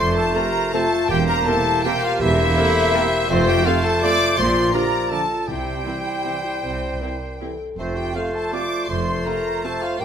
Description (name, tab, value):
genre	classical, orchestral ballroom waltz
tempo	162 BPM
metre	3/4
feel	uneven beats, rubato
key	F major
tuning	A4 = 438 Hz
part	warm symphonic violin section	melody	0.0-10.0 s	C5 to D6	-26 LUFS	left 2 dB	none
part	clear clarinet	second line	0.0-10.0 s	E4 to G4	-31 LUFS	left 2 dB	none
part	clear oboe	second line	0.0-10.0 s	C5 to D5	-30 LUFS	right 1 dB	none
part	clear symphonic violin section	second line	0.0-10.0 s	C5 to D6	-31 LUFS	left 4 dB	none
part	flute section	second line	0.0-10.0 s	C5 to D6	-28 LUFS	left 1 dB	none
part	mellow bassoon	accompaniment	0.0-10.0 s	F3 to Bb3	-28 LUFS	right 2 dB	none
part	mellow French horn section	sustained chords	0.0-10.0 s	C4 to C5	-27 LUFS	left 3 dB	none
part	mellow trumpet	stabs	0.0-10.0 s	C4 to D5	-27 LUFS	right 2 dB	none
part	rich symphonic cello section	bass	0.0-10.0 s	E2 to C3	-28 LUFS	right 2 dB	none
part	rich symphonic double bass section	bass	0.0-10.0 s	E1 to C2	-27 LUFS	right 3 dB	none
part	rich studio viola section	accompaniment	0.3-9.7 s	C4 to Bb4	-30 LUFS	right 1 dB	none
part	warm trombone section	sustained chords	0.3-9.8 s	C3 to Bb3	-32 LUFS	right 4 dB	none
part	timpani	percussion	3.3-6.0 s	F2 to C3	-38 LUFS	left 2 dB	none
room	moderate scoring stage reverb, RT60 1.9 s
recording	close, detailed microphones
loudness	-18 LUFS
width	side -8 dB against mid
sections	0.0-10.0 A section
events	none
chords	0.0 F; 1.1 C7/E; 3.3 F; 4.4 Bb; 5.5 C; 7.8 F